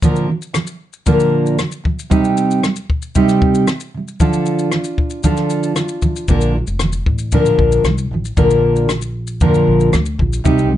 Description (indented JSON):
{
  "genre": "acoustic pop",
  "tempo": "115 BPM",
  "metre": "4/4",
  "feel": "straight",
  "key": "Bb major",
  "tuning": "A4 = 439 Hz",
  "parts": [
    { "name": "fingerpicked steel-string acoustic guitar", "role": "accompaniment", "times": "0.0-10.8 s", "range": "Bb2 to Bb4", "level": "-14 LUFS", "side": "right 1 dB", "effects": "none" },
    { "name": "compact cocktail drum kit", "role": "drums", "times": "0.0-10.7 s", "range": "kick drum, rim click, shaker", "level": "-18 LUFS", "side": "left 2 dB", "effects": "none" },
    { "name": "upright bass", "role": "bass", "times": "6.3-10.8 s", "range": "F1 to F2", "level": "-19 LUFS", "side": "equal", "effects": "none" }
  ],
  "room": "light reverb",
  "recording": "dark, warm production, nothing above 10.4 kHz",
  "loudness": "-13 LUFS",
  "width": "side -12 dB against mid",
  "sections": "0.0-10.8 A section",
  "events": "none",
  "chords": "0.0 Bb; 2.1 Cm; 4.2 Dm; 6.3 Bb"
}